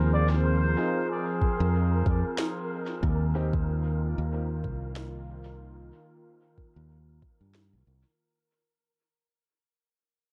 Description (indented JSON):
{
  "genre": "ambient dub",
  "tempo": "93 BPM",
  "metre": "4/4",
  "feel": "swing 57% on 16ths",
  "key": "unclear",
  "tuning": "A4 = 440 Hz",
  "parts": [
    { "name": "trumpet with bucket mute", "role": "melody", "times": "0.0-2.7 s", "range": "Ab4 to D5", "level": "-36 LUFS", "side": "equal", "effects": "dub echo" },
    { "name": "warm analog pad", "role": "sustained chords", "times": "0.0-8.2 s", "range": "Eb3 to G5", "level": "-37 LUFS", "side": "equal", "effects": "lush chorus" },
    { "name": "fingered electric bass", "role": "bass", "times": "0.0-8.0 s", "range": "C2 to G2", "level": "-29 LUFS", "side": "equal", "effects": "none" },
    { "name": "wind-like tuned noise texture", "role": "texture", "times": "0.0-8.2 s", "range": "Bb4", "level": "-41 LUFS", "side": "equal", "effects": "built-in reverb" },
    { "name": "warm upright piano", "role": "stabs", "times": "0.8-3.5 s", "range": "C4 to Ab4", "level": "-42 LUFS", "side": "equal", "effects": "none" },
    { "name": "electronic kick drum", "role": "drums", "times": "1.4-7.4 s", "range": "none", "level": "-31 LUFS", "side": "equal", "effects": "none" },
    { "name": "electronic snare drum", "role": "drums", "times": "2.4-7.7 s", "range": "none", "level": "-39 LUFS", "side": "equal", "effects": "dub echo" }
  ],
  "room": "light reverb",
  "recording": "echo-heavy mix",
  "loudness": "-28 LUFS",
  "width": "mono",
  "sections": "0.0-8.2 A section",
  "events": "fade-out 0.0-8.2",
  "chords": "0.0 Fm7; 3.0 Eb6"
}